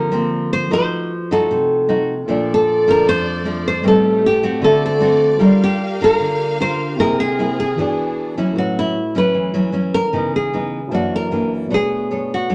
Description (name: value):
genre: bossa nova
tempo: 153 BPM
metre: 4/4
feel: straight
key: F major, A major from 8.6 s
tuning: A4 = 436 Hz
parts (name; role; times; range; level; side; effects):
- nylon-string guitar; melody; 0.0-12.5 s; E4 to C5; -20 LUFS; equal; none
- dark grand piano; accompaniment; 0.0-12.5 s; B2 to A5; -30 LUFS; equal; none
- nylon-string guitar; accompaniment; 0.0-12.5 s; F2 to C#5; -22 LUFS; equal; none
- warm symphonic string section; sustained chords; 2.3-8.5 s; A3 to F5; -31 LUFS; equal; none
room: moderate studio reverb, RT60 0.7 s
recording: none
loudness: -17 LUFS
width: mono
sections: 0.0-8.6 A section; 8.6-12.5 B section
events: none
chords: 0.0 Gm11; 0.7 F7b9; 2.3 Bbmaj7; 3.8 Am7b5; 4.6 D7; 5.4 Gm7; 7.0 C7alt; 7.8 E7; 8.6 A6; 10.1 C#m9; 10.9 F#7alt; 11.7 Bm9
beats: 0.32 | 0.71 1.10 1.50 1.89 | 2.28 2.67 3.06 3.46 | 3.85 4.24 4.63 5.03 | 5.42 5.81 6.20 6.59 | 6.99 7.38 7.77 8.16 | 8.56 8.95 9.35 9.74 | 10.13 10.53 10.92 11.31 | 11.71 12.10 12.49